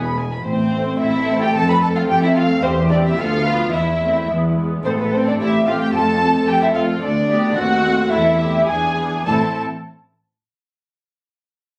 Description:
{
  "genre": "quick classical-period movement for string orchestra",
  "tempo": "109 BPM",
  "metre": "2/4",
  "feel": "straight",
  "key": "A minor",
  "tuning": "A4 = 440 Hz",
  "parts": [
    { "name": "muted symphonic violin section", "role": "melody", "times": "0.0-9.6 s", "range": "B4 to B5", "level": "-22 LUFS", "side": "equal", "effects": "none" },
    { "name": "muted symphonic viola section", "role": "accompaniment", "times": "0.0-9.6 s", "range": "F3 to E4", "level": "-25 LUFS", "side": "equal", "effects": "none" },
    { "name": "muted symphonic cello section", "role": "bass", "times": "0.0-9.6 s", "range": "E2 to B4", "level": "-28 LUFS", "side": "equal", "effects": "none" },
    { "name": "muted symphonic double bass section", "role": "bass", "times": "0.0-9.6 s", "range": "E1 to F2", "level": "-23 LUFS", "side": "equal", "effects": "none" },
    { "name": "muted symphonic violin section", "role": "second line", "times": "0.4-9.6 s", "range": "B3 to B4", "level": "-27 LUFS", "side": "equal", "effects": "none" }
  ],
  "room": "light reverb",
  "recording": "recorded on a phone in the room, studio reverb, compression",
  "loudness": "-18 LUFS",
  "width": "mono",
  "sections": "0.4-9.3 A section; 9.3-10.4 B section",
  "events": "none",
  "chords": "0.4 Am; 1.5 F; 2.6 C/E; 3.2 Bdim/D; 3.7 Am/E; 4.3 E; 4.8 Am; 5.9 F; 7.0 Gadd9/D; 7.6 D#dim7; 8.1 Am/E; 8.7 E7; 9.3 Am"
}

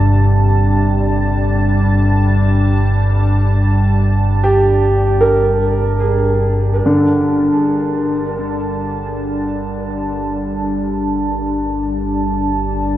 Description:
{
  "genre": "dark ambient drone",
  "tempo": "free time",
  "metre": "none",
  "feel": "none",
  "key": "G minor",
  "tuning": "A4 = 439 Hz",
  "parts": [
    { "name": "deep dark ambient pad", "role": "sustained chords", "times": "0.0-13.0 s", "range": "G3 to A5", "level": "-20 LUFS", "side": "right 1 dB", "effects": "chorus, built-in reverb" },
    { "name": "warm concert grand piano", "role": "arpeggios", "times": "0.0-13.0 s", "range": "C3 to Bb4", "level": "-18 LUFS", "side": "right 1 dB", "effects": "tape echo" },
    { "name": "deep rumbling drone", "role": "drone", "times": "0.0-13.0 s", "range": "G1 to G2", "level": "-16 LUFS", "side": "equal", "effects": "built-in reverb, wide subtle chorus" }
  ],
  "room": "wet cathedral reverb, RT60 5.7 s",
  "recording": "worn, warbling old tape, cassette tape, warbly pitch drift, nothing above 7.6 kHz",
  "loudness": "-13 LUFS",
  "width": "side -13 dB against mid",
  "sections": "0.0-6.9 A section; 6.9-13.0 B section",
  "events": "fade-out on ambient pad 0.0-6.9; fade-in on ambient pad 6.9-13.0; filter sweep on synth drone 6.9-13.0",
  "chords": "0.0 Gm"
}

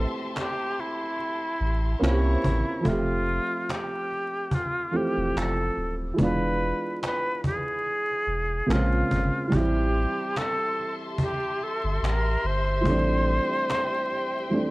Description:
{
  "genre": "lo-fi hip hop",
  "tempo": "72 BPM",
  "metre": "4/4",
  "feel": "swing 56% on 16ths",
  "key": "unclear",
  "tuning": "A4 = 441 Hz",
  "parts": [
    { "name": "jazz flute", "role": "melody", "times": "0.0-14.7 s", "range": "E4 to C5", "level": "-28 LUFS", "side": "equal", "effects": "low-pass filter" },
    { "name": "dark upright piano", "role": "accompaniment", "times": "0.0-14.7 s", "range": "C3 to E5", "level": "-28 LUFS", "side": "right 1 dB", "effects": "low-pass filter" },
    { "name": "warm studio string section", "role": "sustained chords", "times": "0.0-2.8, 9.5-14.7 s", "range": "G4 to Db6", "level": "-36 LUFS", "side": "left 2 dB", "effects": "low-pass filter" },
    { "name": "warm sub bass", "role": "bass", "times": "0.0-13.4 s", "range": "D1 to C2", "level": "-26 LUFS", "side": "equal", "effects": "none" },
    { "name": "cajon", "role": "drums", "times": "0.4-14.6 s", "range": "none", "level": "-30 LUFS", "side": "equal", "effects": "none" }
  ],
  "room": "small room ambience",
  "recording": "vinyl crackle",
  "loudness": "-24 LUFS",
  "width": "side -20 dB against mid",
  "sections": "0.0-14.7 A section",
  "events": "none",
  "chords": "0.0 Am7; 2.0 C7b9; 2.9 Fmaj9; 6.2 E7b9; 8.7 Bbm7; 9.5 Am7"
}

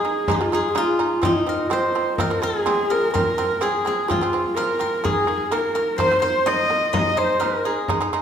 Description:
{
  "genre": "mongolian traditional, Mongolian folk",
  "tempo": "126 BPM",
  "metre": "4/4",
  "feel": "straight",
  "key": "F yu mode",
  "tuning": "A4 = 438 Hz",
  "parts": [
    { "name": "dark horsehead fiddle", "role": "melody", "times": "0.0-7.9 s", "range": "Eb4 to Eb5", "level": "-22 LUFS", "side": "equal", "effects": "none" },
    { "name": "steel-string zither", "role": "second line", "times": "0.0-8.2 s", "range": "Eb4 to Eb5", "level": "-24 LUFS", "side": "left 3 dB", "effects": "none" },
    { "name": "shamisen", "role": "arpeggios", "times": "0.0-8.2 s", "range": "Eb3 to Eb4", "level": "-26 LUFS", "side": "right 5 dB", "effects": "none" },
    { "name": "frame drum", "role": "percussion", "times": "0.3-8.2 s", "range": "none", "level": "-28 LUFS", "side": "left 2 dB", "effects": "none" }
  ],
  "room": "wet recital hall reverb, RT60 1.4 s",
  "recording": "minimal, uncompressed stereo recording",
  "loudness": "-18 LUFS",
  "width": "side -8 dB against mid",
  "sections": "0.0-8.2 A section",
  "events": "none",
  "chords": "0.0 Ab5; 1.2 F5; 5.0 Eb5; 6.9 Ab5"
}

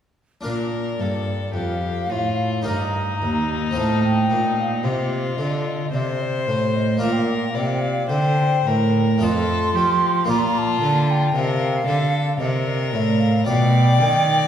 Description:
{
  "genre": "classical, baroque-style sonata movement with continuo",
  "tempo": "56 BPM",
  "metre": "3/4",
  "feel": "straight",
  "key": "Bb major",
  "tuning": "A4 = 439 Hz",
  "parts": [
    { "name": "harpsichord", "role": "accompaniment", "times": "0.4-14.5 s", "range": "Eb2 to Eb5", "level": "-27 LUFS", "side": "left 1 dB", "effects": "none" },
    { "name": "rich cello", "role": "bass", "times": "0.4-14.5 s", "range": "Eb2 to F3", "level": "-21 LUFS", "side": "right 1 dB", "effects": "none" },
    { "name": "warm violin", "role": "melody", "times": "0.5-14.5 s", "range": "Eb4 to D5", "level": "-27 LUFS", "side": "left 6 dB", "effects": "none" },
    { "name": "mellow hollow concert flute", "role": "second line", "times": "0.5-14.5 s", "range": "C5 to C6", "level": "-24 LUFS", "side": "right 1 dB", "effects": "none" }
  ],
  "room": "wet concert hall reverb, RT60 2.0 s",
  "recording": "heard from further back in the room",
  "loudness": "-18 LUFS",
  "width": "side -9 dB against mid",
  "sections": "0.5-14.5 A section",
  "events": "none",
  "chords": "0.5 Bb; 2.7 Eb/G; 3.8 F7/A; 9.2 F7; 10.3 Bb; 13.5 G7/B"
}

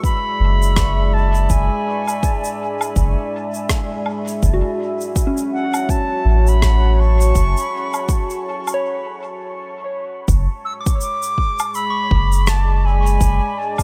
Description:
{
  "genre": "ambient dub",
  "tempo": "82 BPM",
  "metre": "4/4",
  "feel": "swing 59% on 16ths",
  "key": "unclear",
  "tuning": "A4 = 440 Hz",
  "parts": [
    { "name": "silver concert flute", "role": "melody", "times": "0.0-13.8 s", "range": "F#5 to E6", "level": "-26 LUFS", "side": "equal", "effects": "dub echo" },
    { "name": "deep dark ambient pad", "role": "sustained chords", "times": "0.0-13.8 s", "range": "G#3 to A5", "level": "-29 LUFS", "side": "equal", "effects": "chorus, built-in reverb" },
    { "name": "soft synth bell", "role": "arpeggios", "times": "0.0-13.8 s", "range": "C#4 to D6", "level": "-30 LUFS", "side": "equal", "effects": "chorus, dub echo" },
    { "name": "electronic kick drum", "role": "drums", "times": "0.0-13.8 s", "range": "none", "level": "-22 LUFS", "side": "equal", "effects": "none" },
    { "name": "shaker, rim click and woodblock", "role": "drums", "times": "0.0-13.8 s", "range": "none", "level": "-28 LUFS", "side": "equal", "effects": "dub echo" },
    { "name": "soft dub sub bass", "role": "bass", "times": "0.4-13.4 s", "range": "F#1 to A1", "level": "-17 LUFS", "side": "equal", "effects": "none" }
  ],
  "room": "light reverb",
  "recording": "none",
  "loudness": "-18 LUFS",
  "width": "mono",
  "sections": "0.0-10.3 A section; 10.3-13.8 B section",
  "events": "break 8.8-10.3",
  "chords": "0.0 E7/F#; 4.4 F#m7; 10.3 Bm69/F#"
}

